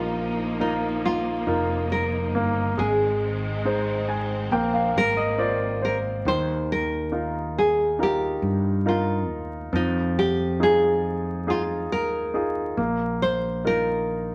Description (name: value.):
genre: pop.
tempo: 69 BPM.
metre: 4/4.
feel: straight.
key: Eb major.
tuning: A4 = 440 Hz.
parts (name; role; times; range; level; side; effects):
nylon-string guitar; melody; 0.0-14.3 s; Eb4 to C5; -27 LUFS; equal; none.
warm baby grand piano; accompaniment; 0.0-14.3 s; Eb3 to Ab5; -29 LUFS; equal; none.
warm studio string section; sustained chords; 0.0-6.2 s; Eb3 to Eb4; -34 LUFS; equal; none.
fretless electric bass; bass; 0.0-14.3 s; F1 to G2; -31 LUFS; equal; none.
room: moderate studio reverb, RT60 0.9 s.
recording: vinyl crackle.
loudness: -24 LUFS.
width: mono.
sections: 0.0-6.3 A section; 6.3-14.3 A section.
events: grand piano fill 3.6-6.3.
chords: 0.0 Bbsus4; 2.8 Ab; 4.5 Bbsus2; 6.3 Ebsus2; 9.7 Fm7; 12.8 Bbsus4.